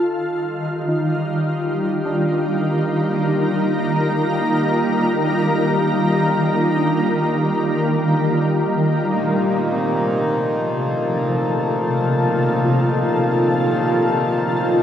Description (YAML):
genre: ambient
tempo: 51 BPM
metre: 4/4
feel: straight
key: unclear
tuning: A4 = 440 Hz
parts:
  - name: shimmering ambient pad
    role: sustained chords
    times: 0.0-14.8 s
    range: C3 to Bb4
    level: -18 LUFS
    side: equal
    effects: chorus, built-in reverb
  - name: muted felt-like synth keys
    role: arpeggios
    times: 0.9-14.8 s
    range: A3 to F4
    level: -29 LUFS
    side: equal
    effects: chorus, diffuse ambient delay
  - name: hand-pumped harmonium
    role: drone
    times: 9.1-14.8 s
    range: Bb2 to Eb3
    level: -21 LUFS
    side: equal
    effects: none
room: wet lush hall reverb, RT60 3.0 s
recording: dreamy mix soaked in reverb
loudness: -17 LUFS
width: side -9 dB against mid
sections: 0.0-9.1 A section; 9.1-14.8 B section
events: none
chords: 0.0 Ebadd9; 9.1 F